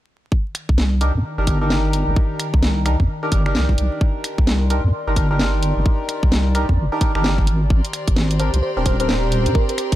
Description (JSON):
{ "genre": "UK garage, two-step garage", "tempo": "130 BPM", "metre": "4/4", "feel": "swing 62% on 16ths", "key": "C minor", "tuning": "A4 = 440 Hz", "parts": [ { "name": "electronic kick drum", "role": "drums", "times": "0.3-10.0 s", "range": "none", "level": "-18 LUFS", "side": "equal", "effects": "none" }, { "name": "warbly tape-like pad", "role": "texture", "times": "0.3-10.0 s", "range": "Eb3 to C6", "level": "-29 LUFS", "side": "equal", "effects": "chorus, built-in reverb, sidechain pumping" }, { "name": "garage drum kit", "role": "drums", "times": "0.5-10.0 s", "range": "finger snaps, hi-hat, snare drum", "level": "-24 LUFS", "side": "equal", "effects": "none" }, { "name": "deep soft wobble bass", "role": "bass", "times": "0.7-10.0 s", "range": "Eb1 to Ab2", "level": "-18 LUFS", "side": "equal", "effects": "chorus" }, { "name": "percussive organ stab", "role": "stabs", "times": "1.0-10.0 s", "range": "C4 to Bb4", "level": "-25 LUFS", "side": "equal", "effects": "lush chorus, dub echo" }, { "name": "clear studio violin section", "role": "sustained chords", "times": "7.7-10.0 s", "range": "D5 to C6", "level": "-32 LUFS", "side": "left 2 dB", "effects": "sidechain pumping" }, { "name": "bell-like FM electric piano", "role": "melody", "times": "8.4-9.7 s", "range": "Bb4 to C5", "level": "-26 LUFS", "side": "equal", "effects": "chorus, phaser" } ], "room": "digital ambience", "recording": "vinyl crackle", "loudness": "-16 LUFS", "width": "side -14 dB against mid", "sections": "0.3-10.0 A section", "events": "none", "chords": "0.3 Cm9; 7.5 Abmaj9#11", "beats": "| 0.32 0.78 1.24 1.70 | 2.17 2.63 3.09 3.55 | 4.01 4.47 4.93 5.40 | 5.86 6.32 6.78 7.24 | 7.70 8.16 8.63 9.09 | 9.55" }